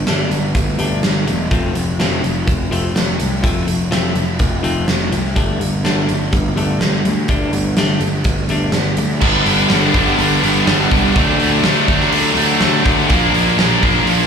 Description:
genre	quiet-loud alternative rock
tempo	124 BPM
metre	4/4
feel	straight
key	unclear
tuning	A4 = 442 Hz
part	twangy electric guitar	arpeggios	0.0-9.2 s	F3 to D4	-22 LUFS	left 4 dB	slapback echo
part	fuzz picked electric bass	bass	0.0-14.2 s	E1 to D2	-19 LUFS	equal	overdrive
part	big rock drum kit	drums	0.1-14.2 s	crash cymbal, hi-hat, kick drum, snare drum	-18 LUFS	right 1 dB	none
part	distorted electric guitar	riff	9.2-14.3 s	G2 to D4	-18 LUFS	equal	overdrive, slapback echo
part	overdriven semi-hollow guitar	riff	9.2-14.3 s	G2 to D4	-18 LUFS	right 12 dB	slapback echo
part	tight distorted guitar	riff	9.2-14.3 s	G2 to D4	-18 LUFS	left 13 dB	distortion, slapback echo
room	light reverb, small room ambience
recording	live gig heard through the venue's PA, club ambience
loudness	-13 LUFS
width	side -7 dB against mid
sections	0.0-9.2 A section; 9.2-14.3 B section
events	none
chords	0.0 Gsus2; 1.5 F; 5.4 Gsus2; 9.2 G; 11.2 D; 13.1 Bb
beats	0.07 0.55 1.03 | 1.51 1.99 2.47 2.96 | 3.44 3.92 4.40 4.88 | 5.36 5.84 6.32 6.81 | 7.29 7.77 8.26 8.74 | 9.22 9.71 10.19 10.68 | 11.16 11.65 12.13 12.62 | 13.10 13.59 14.08

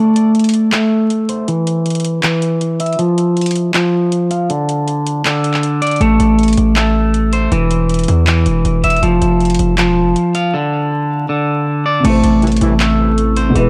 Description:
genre	hip hop, trap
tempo	159 BPM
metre	4/4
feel	half-time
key	A minor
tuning	A4 = 440 Hz
part	electric guitar at the edge of break-up	arpeggios	0.0-13.7 s	D3 to F5	-16 LUFS	equal	low-pass filter, tape echo
part	trap drum kit	drums	0.2-13.6 s	crash cymbal, handclaps, hi-hat	-23 LUFS	equal	vintage 12-bit sampler grit
part	distorted 808-style bass	bass	6.0-13.7 s	E1 to E2	-17 LUFS	equal	distortion
part	dark concert grand piano	accompaniment	12.0-13.7 s	B2 to C5	-20 LUFS	equal	none
part	dark analog pad	sustained chords	12.0-13.7 s	E3 to A4	-26 LUFS	equal	none
part	mellow brass ensemble	stabs	12.4-12.7 s	C2 to E3	-26 LUFS	equal	tape echo
room	digital ambience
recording	dark, warm production, vinyl crackle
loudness	-14 LUFS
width	mono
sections	0.0-12.0 A section; 12.0-13.7 B section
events	break 0.0-6.0, 10.5-12.0; filter sweep on clean electric guitar 0.0-6.0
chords	0.0 Am; 1.5 N.C.; 6.0 Am; 7.5 N.C.; 12.0 Am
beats	0.35 0.72 1.10 | 1.48 1.86 2.23 2.61 | 2.99 3.37 3.74 4.12 | 4.50 4.88 5.25 5.63 | 6.01 6.38 6.76 7.14 | 7.52 7.89 8.27 8.65 | 9.03 9.40 9.78 10.16 | 10.54 10.91 11.29 11.67 | 12.05 12.42 12.80 13.18 | 13.55

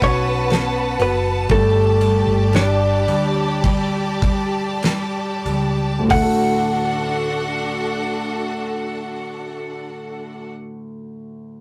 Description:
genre	pop ballad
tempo	46-63 BPM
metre	4/4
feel	straight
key	D major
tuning	A4 = 441 Hz
part	direct-recorded clean electric guitar	melody	0.0-10.5 s	A3 to F#5	-22 LUFS	equal	none
part	dark concert grand piano	accompaniment	0.0-11.6 s	D2 to A4	-27 LUFS	equal	none
part	rich studio string section	sustained chords	0.0-10.5 s	D4 to A5	-26 LUFS	equal	none
part	woody fretless electric bass	bass	0.0-10.5 s	F#1 to D2	-25 LUFS	equal	none
part	damped 70s drum kit	drums	0.0-6.4 s	hi-hat, kick drum, ride cymbal, snare drum, toms	-26 LUFS	equal	none
room	wet booth ambience, RT60 0.2 s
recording	rough rehearsal-room recording, warm saturation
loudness	-19 LUFS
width	mono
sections	0.0-6.1 A section; 6.1-11.3 B section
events	slowing down 0.0-6.1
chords	0.0 B5; 1.5 Gsus2; 6.1 D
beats	0.50 | 1.50 2.54 3.64 4.83 | 6.10 7.41 8.71 10.01

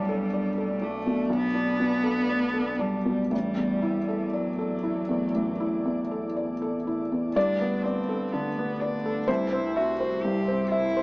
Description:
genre	neoclassical piano and strings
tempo	58-63 BPM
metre	4/4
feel	rubato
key	G major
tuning	A4 = 440 Hz
part	rich cello	second line	0.0-11.0 s	F#3 to G4	-30 LUFS	equal	none
part	felt-muted upright piano	accompaniment	0.0-11.0 s	A1 to E5	-26 LUFS	equal	none
part	glassy FM pad	sustained chords	0.0-11.0 s	G3 to D5	-33 LUFS	equal	ensemble chorus, built-in reverb
part	punchy sub bass	bass	0.0-11.0 s	G1 to C2	-45 LUFS	equal	none
room	light reverb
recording	small speaker sound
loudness	-24 LUFS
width	side -25 dB against mid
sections	0.0-7.4 A section; 7.4-11.0 B section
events	none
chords	0.0 Gadd9/B; 3.3 Dadd9/A; 7.4 Gadd9; 9.3 C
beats	0.35 1.33 2.31 | 3.32 4.34 5.35 6.36 | 7.35 8.33 9.28 10.24

